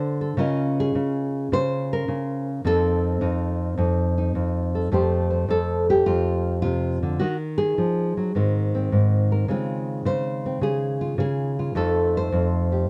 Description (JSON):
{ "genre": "solo jazz", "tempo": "106 BPM", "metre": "4/4", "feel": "swing 69% on 8ths", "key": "unclear", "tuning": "A4 = 439 Hz", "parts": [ { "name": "nylon-string guitar", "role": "solo", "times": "0.0-12.9 s", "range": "F2 to Eb5", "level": "-23 LUFS", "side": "equal", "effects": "none" } ], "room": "little or no reverb", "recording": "close, detailed microphones", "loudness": "-23 LUFS", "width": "mono", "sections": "0.0-4.9 A section; 4.9-12.9 B section", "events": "none", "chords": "0.4 Db69; 2.6 F7; 4.9 Fadd9; 7.2 Ebmadd9; 8.3 Abadd9; 9.5 Dbmaj9; 11.7 F9" }